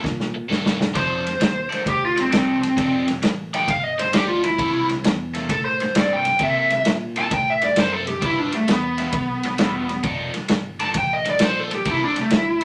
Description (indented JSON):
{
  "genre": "electric blues shuffle",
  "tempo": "132 BPM",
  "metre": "4/4",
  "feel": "swing 67% on 8ths",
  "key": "C mixolydian",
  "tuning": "A4 = 440 Hz",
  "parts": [
    { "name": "cranked stack guitar", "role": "riff", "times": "0.0-12.4 s", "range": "C3 to E5", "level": "-31 LUFS", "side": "equal", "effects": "overdrive, phaser" },
    { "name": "fingered electric bass", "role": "bass", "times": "0.0-12.6 s", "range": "E1 to C3", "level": "-35 LUFS", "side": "equal", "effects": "none" },
    { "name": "vintage drum kit", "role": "drums", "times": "0.0-12.6 s", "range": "kick drum, ride cymbal, snare drum", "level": "-26 LUFS", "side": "equal", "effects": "none" },
    { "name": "lead guitar through a small cranked amp", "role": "melody", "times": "1.0-12.6 s", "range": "A3 to A5", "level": "-23 LUFS", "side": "equal", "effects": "overdrive" }
  ],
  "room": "moderate club reverb, RT60 0.5 s",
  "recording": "none",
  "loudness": "-21 LUFS",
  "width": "mono",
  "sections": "0.0-12.6 A section",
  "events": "lead electric guitar solo 0.0-12.6; drum fill 0.0-1.0",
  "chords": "0.0 C13; 1.0 F13; 4.6 C6; 8.2 G6; 10.0 F13; 11.9 C13"
}